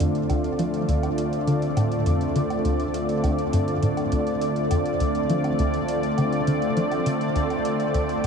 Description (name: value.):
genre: ambient, sequencer-driven space music.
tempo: 102 BPM.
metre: 4/4.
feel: straight.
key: D minor.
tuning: A4 = 441 Hz.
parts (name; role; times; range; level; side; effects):
lush unison pad; sustained chords; 0.0-8.3 s; D3 to D5; -23 LUFS; equal; chorus.
tight sequencer bass; riff; 0.0-8.3 s; D2 to F3; -26 LUFS; equal; ensemble chorus, cassette tape, tape echo.
warm sub bass; bass; 0.0-8.3 s; D2; -46 LUFS; equal; none.
electronic hi-hat and woodblock; percussion; 0.0-8.3 s; none; -40 LUFS; right 1 dB; overdrive, tape echo.
room: wet huge ambient reverb, RT60 8.1 s.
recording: dreamy mix soaked in reverb, cassette tape.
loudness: -21 LUFS.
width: side -6 dB against mid.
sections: 0.0-8.3 A section.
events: filter sweep on analog synth bass 0.0-8.3.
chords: 0.0 Dm7.